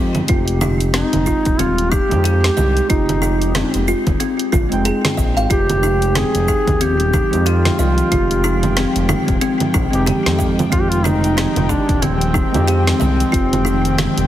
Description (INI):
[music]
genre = organic downtempo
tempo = 92 BPM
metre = 4/4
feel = swing 58% on 16ths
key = F minor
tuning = A4 = 440 Hz
[part]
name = muted felt-like synth keys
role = accompaniment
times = 0.0-14.3 s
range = Eb3 to G5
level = -23 LUFS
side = right 1 dB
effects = chorus, vintage 12-bit sampler grit, sidechain pumping, tape echo
[part]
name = kalimba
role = arpeggios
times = 0.0-14.1 s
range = Eb3 to F5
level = -22 LUFS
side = left 1 dB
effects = tape echo
[part]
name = smooth gliding synth bass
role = bass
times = 0.0-14.3 s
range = Eb1 to F2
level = -19 LUFS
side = equal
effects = sidechain pumping
[part]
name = deep house drum kit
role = drums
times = 0.1-14.3 s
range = cabasa, congas, hi-hat, snare drum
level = -22 LUFS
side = right 2 dB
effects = none
[part]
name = electronic kick drum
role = drums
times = 0.3-13.5 s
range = none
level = -20 LUFS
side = equal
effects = none
[part]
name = mellow duduk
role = melody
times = 1.0-14.3 s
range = C4 to Ab4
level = -21 LUFS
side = equal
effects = digital delay
[part]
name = airy breathy pad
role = sustained chords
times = 5.5-14.3 s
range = Eb3 to G5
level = -24 LUFS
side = equal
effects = chorus, sidechain pumping
[sound]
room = light reverb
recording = heavily compressed radio sound, multiband compression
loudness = -14 LUFS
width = side -12 dB against mid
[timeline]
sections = 0.0-14.3 A section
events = none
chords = 0.0 Fm9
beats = | 0.29 0.94 1.59 2.25 | 2.90 3.55 4.20 4.86 | 5.51 6.16 6.81 7.46 | 8.12 8.77 9.42 10.07 | 10.72 11.38 12.03 12.68 | 13.33 13.98